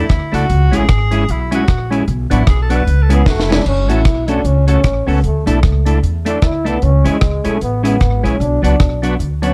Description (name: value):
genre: ska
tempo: 152 BPM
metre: 4/4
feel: swing 59% on 8ths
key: F# minor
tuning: A4 = 440 Hz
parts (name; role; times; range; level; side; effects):
- warm tenor saxophone; melody; 0.0-3.7 s; E4 to B4; -24 LUFS; equal; slapback echo
- clean electric guitar; accompaniment; 0.0-9.5 s; F#3 to A4; -22 LUFS; equal; none
- overdriven tonewheel organ; stabs; 0.0-9.5 s; B3 to B4; -26 LUFS; equal; chorus vibrato
- upright bass; bass; 0.0-9.5 s; E#1 to E2; -17 LUFS; equal; none
- deep reggae drum kit; drums; 0.1-9.5 s; crash cymbal, hi-hat, kick drum, rim click, snare drum; -18 LUFS; equal; none
- breathy trombone; melody; 3.1-9.5 s; G#3 to E4; -22 LUFS; equal; slapback echo
room: small room reverb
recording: dark, warm production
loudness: -14 LUFS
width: mono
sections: 0.0-3.7 A section; 3.7-9.5 B section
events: tenor saxophone solo 0.0-3.7; drum fill 3.3-3.7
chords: 0.5 C#m; 2.1 Bm; 2.9 C#m; 3.7 F#m; 5.2 Dsus2; 6.8 C#m; 8.4 Bm